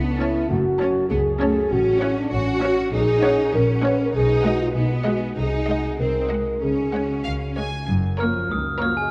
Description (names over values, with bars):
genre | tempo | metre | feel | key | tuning
cinematic, playful, whimsical film cue | 98 BPM | 2/4 | straight | F# major | A4 = 441 Hz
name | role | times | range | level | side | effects
dark French horn section | sustained chords | 0.0-9.1 s | D#3 to B4 | -25 LUFS | equal | none
concert harp | arpeggios | 0.0-9.1 s | F#2 to D#5 | -33 LUFS | equal | none
rich chamber double bass section | bass | 0.0-9.0 s | F#1 to C#2 | -28 LUFS | equal | none
rich symphonic cello section | bass | 0.0-9.0 s | C#2 to F#4 | -30 LUFS | equal | none
rich chamber violin section | melody | 0.2-9.0 s | C#5 to A5 | -39 LUFS | equal | none
rich chamber violin section | second line | 0.2-9.0 s | A#4 to D#5 | -35 LUFS | equal | none
rich studio viola section | accompaniment | 0.2-9.0 s | G#3 to C#4 | -30 LUFS | equal | none
glockenspiel with soft plastic mallets | melody | 8.2-9.1 s | G#5 to E#6 | -26 LUFS | equal | none
room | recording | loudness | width
moderate concert hall reverb, RT60 2.4 s | none | -21 LUFS | mono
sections
0.0-7.9 A section; 7.9-9.1 B section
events
none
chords
0.0 A/C#; 0.5 F#m; 1.7 F#m/A; 2.9 F#/A#; 4.1 G#m7/B; 5.4 G#7/B#; 6.6 C#sus4; 7.3 C#; 7.9 F#